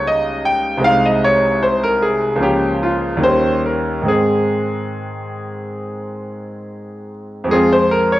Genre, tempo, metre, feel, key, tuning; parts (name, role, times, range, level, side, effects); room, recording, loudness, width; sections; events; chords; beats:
classical, baroque-style suite movement for grand piano; 69-77 BPM; 4/4; rubato; Ab major; A4 = 441 Hz
bright concert grand piano; solo; 0.0-8.2 s; C2 to G5; -15 LUFS; equal
wet recital hall reverb, RT60 1.5 s; worn, warbling old tape, cassette tape, warbly pitch drift; -14 LUFS; side -15 dB against mid
0.0-7.5 A section
0.0 Eb7/Db; 0.8 Ab/C; 2.4 Bbm/Db; 3.2 Eb7; 4.1 Ab; 7.5 Fm
0.06 | 0.85 1.63 2.41 3.23 | 4.08 4.94 5.80 6.66 | 7.50